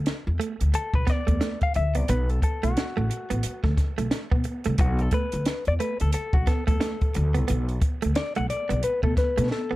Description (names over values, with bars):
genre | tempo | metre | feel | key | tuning
funk | 89 BPM | 4/4 | swing 60% on 16ths | B minor | A4 = 440 Hz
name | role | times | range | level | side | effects
upright bass | bass | 0.0-9.8 s | A1 to B2 | -25 LUFS | equal | none
compact cocktail drum kit | drums | 0.1-9.7 s | hi-hat, kick drum, snare drum | -25 LUFS | equal | none
direct-recorded clean electric guitar | riff | 0.4-9.8 s | A3 to B3 | -32 LUFS | right 6 dB | spring reverb
semi-hollow electric guitar | accompaniment | 0.8-9.8 s | F#4 to F#5 | -29 LUFS | left 4 dB | wah
room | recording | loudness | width
little or no reverb | none | -22 LUFS | side -17 dB against mid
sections
0.0-9.8 A section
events
clean electric guitar solo 0.0-9.8; drum fill 9.5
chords
0.0 Bm7